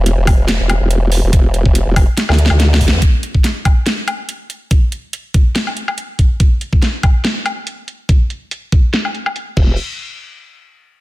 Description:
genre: heavy wobble dubstep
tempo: 142 BPM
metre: 4/4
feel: swing 54% on 16ths, half-time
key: unclear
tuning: A4 = 441 Hz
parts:
  - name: formant-sweep wobble bass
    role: bass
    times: 0.0-3.0, 9.6-9.8 s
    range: E1 to E2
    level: -13 LUFS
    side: equal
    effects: chorus, overdrive
  - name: dubstep drum kit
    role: drums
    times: 0.1-9.7 s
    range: crash cymbal, handclaps, hi-hat, snare drum, woodblock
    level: -19 LUFS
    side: equal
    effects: low-pass filter on hats, studio reverb, low-pass filter on perc, low-pass filter on snare, low-pass filter on cymbals
  - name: electronic kick drum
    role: drums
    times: 0.3-9.7 s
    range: none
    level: -11 LUFS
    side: equal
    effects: studio reverb
room: little or no reverb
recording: dense, heavily limited modern master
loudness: -12 LUFS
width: side -18 dB against mid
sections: 0.0-3.0 A section; 3.0-9.8 B section; 9.8-11.0 C section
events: drop 0.0-3.0; drum fill 2.2-3.0; band accent 2.9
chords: none

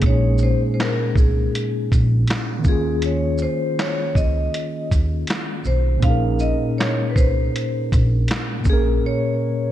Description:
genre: lo-fi hip hop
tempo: 80 BPM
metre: 4/4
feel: swing 55% on 16ths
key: Bb minor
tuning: A4 = 440 Hz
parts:
  - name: tine electric piano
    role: accompaniment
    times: 0.0-9.7 s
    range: Bb2 to Bb4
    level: -23 LUFS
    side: equal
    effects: medium stereo tremolo, low-pass filter
  - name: upright bass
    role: bass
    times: 0.0-9.0 s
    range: Bb1 to Eb2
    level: -20 LUFS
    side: equal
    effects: none
  - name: lo-fi sampler-style drum kit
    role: drums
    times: 0.0-8.8 s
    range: handclaps, hi-hat, kick drum, shaker, snare drum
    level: -20 LUFS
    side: equal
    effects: none
  - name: vibraphone with hard mallets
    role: melody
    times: 0.1-9.7 s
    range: Ab4 to F5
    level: -26 LUFS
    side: left 1 dB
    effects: low-pass filter, analog delay
room: light reverb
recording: cassette tape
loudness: -17 LUFS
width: side -12 dB against mid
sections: 0.0-9.7 A section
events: break 9.0-9.7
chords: 0.0 Bbm11; 2.6 Eb7sus4; 6.0 Bbm11; 8.6 Bbm7

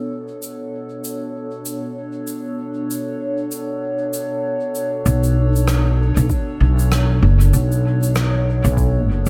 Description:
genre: ambient dub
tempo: 97 BPM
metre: 4/4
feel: swing 59% on 16ths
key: B minor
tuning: A4 = 441 Hz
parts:
  - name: warbly tape-like pad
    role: sustained chords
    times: 0.0-9.3 s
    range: B2 to C#5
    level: -27 LUFS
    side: equal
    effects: chorus, built-in reverb, phaser
  - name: shaker and rim click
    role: drums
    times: 0.4-9.3 s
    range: none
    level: -30 LUFS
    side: equal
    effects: dub echo
  - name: upright bass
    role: bass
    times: 5.1-9.3 s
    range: F#1 to B1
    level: -17 LUFS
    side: equal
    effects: none
  - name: electronic kick drum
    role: drums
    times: 6.3-8.9 s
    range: none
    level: -23 LUFS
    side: equal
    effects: overdrive
room: small room ambience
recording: echo-heavy mix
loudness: -19 LUFS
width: mono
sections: 0.0-5.1 A section; 5.1-9.3 B section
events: none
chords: 0.0 Bm9

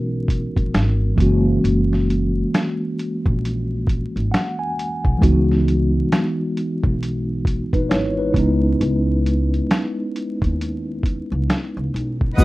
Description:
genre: lo-fi hip hop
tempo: 67 BPM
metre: 4/4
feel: swing 62% on 16ths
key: C# dorian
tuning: A4 = 440 Hz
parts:
  - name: mellow tine electric piano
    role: accompaniment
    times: 0.0-12.4 s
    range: E3 to G#5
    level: -21 LUFS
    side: equal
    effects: medium stereo tremolo, cassette tape
  - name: upright bass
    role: bass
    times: 0.0-12.4 s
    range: F#1 to D#2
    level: -21 LUFS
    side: equal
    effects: none
  - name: lo-fi sampler-style drum kit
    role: drums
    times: 0.3-12.4 s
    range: finger snaps, hi-hat, kick drum, snare drum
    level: -20 LUFS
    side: equal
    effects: none
  - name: rich studio string section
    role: sustained chords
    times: 12.4 s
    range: B4 to D#6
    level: -20 LUFS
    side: equal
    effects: none
  - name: tube shaker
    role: percussion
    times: 12.4 s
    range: none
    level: -34 LUFS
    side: left 1 dB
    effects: none
room: light reverb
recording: rough home demo mix, vinyl crackle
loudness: -17 LUFS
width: side -19 dB against mid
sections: 0.0-12.4 A section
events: tine electric piano fill 3.9-5.2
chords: 0.0 C#m11; 1.2 F#9; 5.2 C#m11; 8.4 C#m9

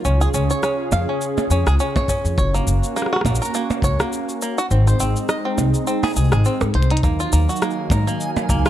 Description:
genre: folktronica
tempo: 103 BPM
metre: 4/4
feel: swing 56% on 16ths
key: Db major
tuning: A4 = 440 Hz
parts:
  - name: warm analog pad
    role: sustained chords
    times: 0.0-8.7 s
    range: Db3 to F5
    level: -25 LUFS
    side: right 2 dB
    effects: chorus
  - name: bluegrass banjo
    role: arpeggios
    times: 0.0-8.7 s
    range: Bb3 to F5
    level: -24 LUFS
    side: equal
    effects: ping-pong delay
  - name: upright bass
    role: bass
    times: 0.0-8.6 s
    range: Gb1 to Ab2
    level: -18 LUFS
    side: equal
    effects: none
  - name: minimal click drum kit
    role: drums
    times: 0.1-8.7 s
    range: hi-hat, percussion blips, rim click, shaker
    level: -25 LUFS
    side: right 1 dB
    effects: none
  - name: kick drum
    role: drums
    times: 2.0-8.6 s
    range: none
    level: -21 LUFS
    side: equal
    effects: none
  - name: backwards swelling texture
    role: texture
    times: 7.7-8.7 s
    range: Ab5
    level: -32 LUFS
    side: right 3 dB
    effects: built-in reverb
room: little or no reverb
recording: none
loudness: -17 LUFS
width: side -12 dB against mid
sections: 0.0-8.7 A section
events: kick drops out 6.5-7.0; drum fill 6.7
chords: 0.0 Db; 2.4 Gb; 4.7 Ab; 7.0 Ebmadd9

